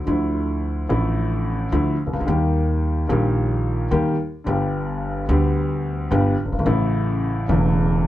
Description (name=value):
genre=tango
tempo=109 BPM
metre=4/4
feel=rubato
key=D minor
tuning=A4 = 439 Hz
part: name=warm grand piano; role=accompaniment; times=0.0-8.1 s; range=E1 to G4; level=-20 LUFS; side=left 1 dB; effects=none
part: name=upright bass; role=bass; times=0.0-8.1 s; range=E1 to Eb2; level=-23 LUFS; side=right 1 dB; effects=none
room=light reverb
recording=none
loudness=-19 LUFS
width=side -14 dB against mid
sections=0.1-8.1 A section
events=none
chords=0.1 Dmadd9; 2.3 Eb; 4.5 G; 6.7 A